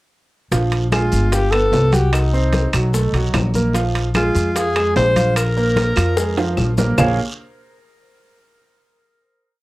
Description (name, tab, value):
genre	Afro-Cuban jazz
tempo	148 BPM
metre	4/4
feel	straight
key	unclear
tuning	A4 = 440 Hz
part	warm concert grand piano	accompaniment	0.5-7.2 s	F3 to Gb5	-22 LUFS	right 2 dB	none
part	upright bass	bass	0.5-7.2 s	G1 to F2	-18 LUFS	equal	none
part	bongos	percussion	0.5-7.1 s	none	-28 LUFS	left 4 dB	none
part	congas	percussion	0.5-7.1 s	none	-24 LUFS	left 1 dB	none
part	guiro	percussion	0.5-7.1 s	none	-35 LUFS	right 3 dB	none
part	maracas	percussion	0.5-7.1 s	none	-33 LUFS	left 3 dB	none
part	timbales	percussion	0.5-7.1 s	none	-26 LUFS	right 4 dB	none
part	clear alto saxophone	melody	0.9-6.5 s	Eb4 to C5	-21 LUFS	left 1 dB	analog delay
part	claves	percussion	0.9-7.1 s	none	-26 LUFS	left 1 dB	none
room	moderate small room reverb, RT60 0.5 s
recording	none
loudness	-15 LUFS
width	side -19 dB against mid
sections	0.5-7.0 A section; 7.0-8.6 final chord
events	drum fill 6.2-7.0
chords	0.5 Bb5; 1.3 G7; 2.1 Cdim; 2.9 B5; 3.7 Bb5; 7.0 Bbm7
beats	| 0.52 0.93 1.33 1.73 | 2.13 2.54 2.94 3.34 | 3.75 4.15 4.55 4.96 | 5.36 5.77 6.17 6.58 | 6.98